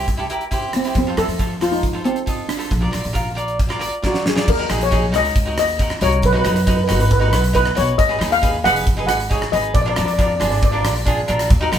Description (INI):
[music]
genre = calypso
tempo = 137 BPM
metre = 4/4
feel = straight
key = Eb minor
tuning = A4 = 440 Hz
[part]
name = cavaquinho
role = accompaniment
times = 0.0-11.8 s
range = D4 to F5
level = -23 LUFS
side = right 1 dB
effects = none
[part]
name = upright bass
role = bass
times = 0.0-11.8 s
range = F1 to F#2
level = -21 LUFS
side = equal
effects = none
[part]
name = gated 80s drum kit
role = drums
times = 0.1-11.8 s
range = crash cymbal, hi-hat, kick drum, rim click, snare drum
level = -21 LUFS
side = equal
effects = none
[part]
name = steel pan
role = melody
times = 0.8-10.9 s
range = C4 to Gb5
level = -20 LUFS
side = left 1 dB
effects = none
[sound]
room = moderate small room reverb, RT60 0.6 s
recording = band playing live in one room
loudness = -16 LUFS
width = side -10 dB against mid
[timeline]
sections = 0.0-4.5 A section; 4.5-11.8 B section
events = drum fill 4.0-4.5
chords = 0.0 C7; 1.0 F; 2.7 Bb; 4.5 Ebm; 6.2 B; 8.0 Abm; 9.7 Bb